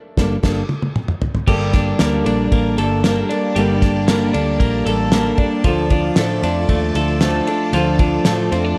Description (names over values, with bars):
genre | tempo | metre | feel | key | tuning
jangly indie pop | 115 BPM | 4/4 | straight | G minor | A4 = 440 Hz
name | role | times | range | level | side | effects
fingerpicked steel-string acoustic guitar | accompaniment | 0.2-8.8 s | G2 to A4 | -24 LUFS | equal | none
vintage muted fingered electric bass | bass | 0.2-8.7 s | G1 to A2 | -24 LUFS | equal | tube saturation
cloth-damped thuddy drum kit | drums | 0.2-8.6 s | crash cymbal, kick drum, ride cymbal, snare drum, toms | -22 LUFS | equal | gated reverb
phased string machine | sustained chords | 1.5-8.8 s | Bb3 to A5 | -32 LUFS | equal | ensemble chorus, phaser
twelve-string electric guitar | arpeggios | 1.5-8.8 s | F3 to A4 | -22 LUFS | equal | none
room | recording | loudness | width
light reverb, studio reverb | none | -17 LUFS | mono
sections
0.0-1.5 A section; 1.5-8.8 A section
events
band accent 0.0-1.5; drum fill 0.4-1.5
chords
0.0 Gmadd9; 5.6 Dm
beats
0.43 0.95 | 1.47 2.00 2.52 3.04 | 3.56 4.08 4.60 5.12 | 5.65 6.17 6.69 7.21 | 7.74 8.26 8.78